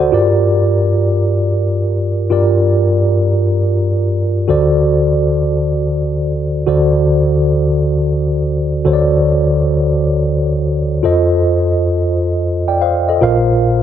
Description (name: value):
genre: pop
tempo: free time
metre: none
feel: none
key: unclear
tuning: A4 = 440 Hz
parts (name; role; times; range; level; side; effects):
- mellow tine electric piano; solo; 0.0-13.8 s; Bb1 to G5; -12 LUFS; equal; medium stereo tremolo
room: moderate lush hall reverb, RT60 2.8 s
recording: none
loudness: -12 LUFS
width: side -10 dB against mid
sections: 0.0-13.2 A section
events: none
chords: 0.1 Gm7; 4.5 D7; 11.0 F7; 13.2 Bbsus2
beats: free time